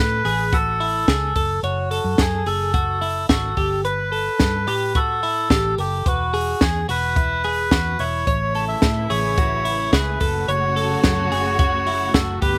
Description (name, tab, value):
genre	jangly indie pop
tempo	108 BPM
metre	4/4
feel	straight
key	unclear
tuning	A4 = 440 Hz
part	melodica	melody	0.0-12.6 s	F#4 to E5	-25 LUFS	equal	slapback echo
part	twelve-string electric guitar	arpeggios	0.0-12.6 s	E4 to C#5	-28 LUFS	equal	slapback echo
part	vintage muted fingered electric bass	bass	0.0-12.6 s	E1 to A2	-28 LUFS	equal	none
part	compact cocktail drum kit	drums	0.2-12.6 s	hi-hat, kick drum, snare drum	-24 LUFS	equal	none
part	muted studio string section	sustained chords	8.3-12.6 s	C#3 to G4	-30 LUFS	equal	none
room	little or no reverb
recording	recorded outdoors, with no room sound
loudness	-20 LUFS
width	mono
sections	0.0-12.6 A section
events	none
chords	0.0 A; 1.4 F#m; 3.6 Gadd9; 6.1 E; 8.3 A; 10.2 F#m